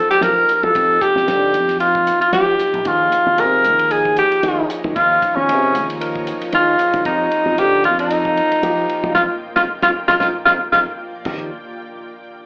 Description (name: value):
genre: electric jazz fusion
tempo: 114 BPM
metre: 4/4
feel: swing 56% on 16ths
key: Eb mixolydian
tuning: A4 = 440 Hz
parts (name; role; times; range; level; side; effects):
- breathy alto saxophone; melody; 0.0-10.8 s; Db4 to Bb4; -14 LUFS; equal; slapback echo
- bell-like tine electric piano; accompaniment; 0.0-11.5 s; F3 to C5; -27 LUFS; equal; medium stereo tremolo, slapback echo
- slap bass with an envelope filter; bass; 0.1-11.5 s; Bb1 to F3; -24 LUFS; equal; none
- damped 70s drum kit; drums; 0.1-11.4 s; crash cymbal, hi-hat, kick drum, ride cymbal, snare drum; -31 LUFS; equal; none
- granular cloud pad; sustained chords; 4.7-11.5 s; Bb3 to Bb5; -30 LUFS; equal; none
room: light reverb, small room reverb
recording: live gig heard through the venue's PA, club reverb, AM radio sound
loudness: -13 LUFS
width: side -30 dB against mid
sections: 0.0-11.3 A section; 11.3-12.5 B section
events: band accent 9.2-11.3; tine electric piano fill 10.2-11.3; drum fill 10.7-11.3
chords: 0.0 F9sus4; 2.9 Eb9sus4; 7.1 F9sus4; 11.3 Eb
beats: 0.22 | 0.75 1.27 1.80 2.33 | 2.85 3.38 3.90 4.43 | 4.96 5.48 6.01 6.53 | 7.06 7.58 8.11 8.63 | 9.15 9.68 10.20 10.73 | 11.25